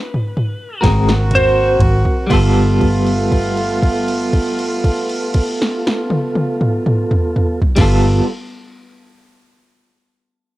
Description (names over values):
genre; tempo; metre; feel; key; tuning
slow blues; 40 BPM (dotted quarters); 12/8; straight; G mixolydian; A4 = 440 Hz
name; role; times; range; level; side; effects
clean lap steel guitar; melody; 0.0-1.8 s; B4 to C5; -17 LUFS; right 1 dB; cassette tape
punchy analog drum machine; drums; 0.1-8.0 s; crash cymbal, kick drum, ride cymbal, snare drum, toms; -18 LUFS; equal; cassette tape
clean electric guitar; accompaniment; 0.8-8.2 s; G3 to Bb4; -19 LUFS; equal; tremolo, cassette tape
mellow tonewheel organ; sustained chords; 0.8-8.2 s; B3 to Bb4; -22 LUFS; right 1 dB; slow rotary speaker, cassette tape
warm horn section; sustained chords; 0.8-8.2 s; A3 to Gb4; -24 LUFS; right 1 dB; cassette tape
vintage muted fingered electric bass; bass; 0.8-8.2 s; G1 to Ab1; -16 LUFS; equal; none
room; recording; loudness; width
light reverb, digital ambience; home recording on cassette; -13 LUFS; side -16 dB against mid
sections
0.0-2.3 A section; 2.3-8.4 B section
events
drum fill 0.0-2.3; slowing down 0.0-2.3; electric slide guitar solo 0.0-2.3; stop 0.0-0.8; held note 2.3-7.8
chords
0.0 N.C.; 0.8 Ab9; 2.3 G9